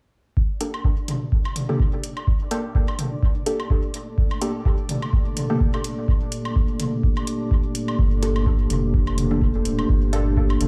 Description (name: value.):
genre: dub techno.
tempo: 126 BPM.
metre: 4/4.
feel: swing 56% on 16ths.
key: G minor.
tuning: A4 = 440 Hz.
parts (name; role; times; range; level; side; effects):
dark analog pad; sustained chords; 0.4-10.7 s; Bb3 to A4; -30 LUFS; equal; subtle chorus, sidechain pumping.
electronic kick drum; drums; 0.4-10.5 s; none; -23 LUFS; equal; none.
bubbling stepped-filter texture; texture; 0.8-10.7 s; D4 to D5; -41 LUFS; equal; chorus, built-in reverb, sidechain pumping.
filtered dub chord stab; stabs; 0.6-10.2 s; Bb3 to A4; -31 LUFS; equal; chorus, phaser, sidechain pumping, dub echo.
electronic hi-hat; drums; 0.6-10.7 s; none; -35 LUFS; equal; overdrive.
electronic woodblock and toms; percussion; 0.7-10.7 s; none; -32 LUFS; equal; overdrive, sidechain pumping on perc, sidechain pumping on toms, dub echo.
soft dub sub bass; bass; 8.0-10.7 s; D1 to G1; -25 LUFS; equal; sidechain pumping.
room: digital ambience.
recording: none.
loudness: -22 LUFS.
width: mono.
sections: 0.4-10.7 A section.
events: filter sweep on analog synth pad 0.4-10.7.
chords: 0.4 Gmadd9.